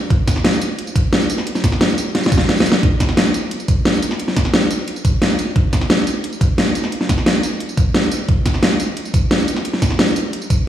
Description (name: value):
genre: drum and bass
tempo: 176 BPM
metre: 4/4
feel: straight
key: none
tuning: none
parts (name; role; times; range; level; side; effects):
- dubstep drum kit; drums; 0.1-10.6 s; hi-hat, snare drum, tambourine; -16 LUFS; equal; none
- electronic kick drum; drums; 0.1-10.6 s; none; -16 LUFS; equal; none
room: wet lush hall reverb, RT60 1.9 s, digital ambience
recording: played on a big sound system in a bare room, large studio reverb, small room ambience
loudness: -14 LUFS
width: side -11 dB against mid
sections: 0.0-10.7 A section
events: drum fill 2.1-2.8; kick drops out 2.5-2.8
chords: none